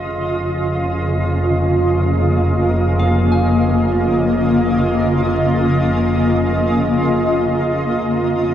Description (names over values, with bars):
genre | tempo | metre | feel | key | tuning
ambient | free time | none | none | unclear | A4 = 445 Hz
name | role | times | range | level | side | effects
shimmering ambient pad | sustained chords | 0.0-8.5 s | Db3 to Eb5 | -15 LUFS | equal | chorus, built-in reverb, shimmer reverb
soft synth bell | arpeggios | 0.0-8.0 s | Eb5 to Ab5 | -33 LUFS | equal | none
rich studio double bass section | bass | 0.0-8.5 s | F1 | -20 LUFS | equal | none
bowed-like drone | drone | 8.4-8.5 s | F3 to C4 | -34 LUFS | left 2 dB | none
room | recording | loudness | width
wet lush hall reverb, RT60 2.9 s | none | -14 LUFS | side -10 dB against mid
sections
0.0-8.5 A section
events
none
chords
0.0 Bbm/F; 8.0 F7(no3)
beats
free time